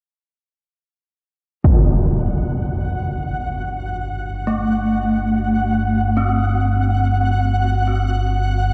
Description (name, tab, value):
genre	dark ambient drone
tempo	free time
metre	none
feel	none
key	unclear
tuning	A4 = 440 Hz
part	deep rumbling drone	drone	2.8-8.7 s	G1 to G2	-23 LUFS	equal	built-in reverb
part	impact	percussion	1.6-1.9 s	none	-21 LUFS	equal	low-pass filter on sfx
part	flickering grainy texture	texture	2.3-8.7 s	F#5	-27 LUFS	equal	built-in reverb
part	gamelan-type bronze metallophone	arpeggios	4.5-8.7 s	A3 to C4	-24 LUFS	equal	delay
room	wet cathedral reverb, RT60 5.3 s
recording	none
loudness	-19 LUFS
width	mono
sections	1.6-8.7 A section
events	none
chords	1.6 Gsus24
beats	free time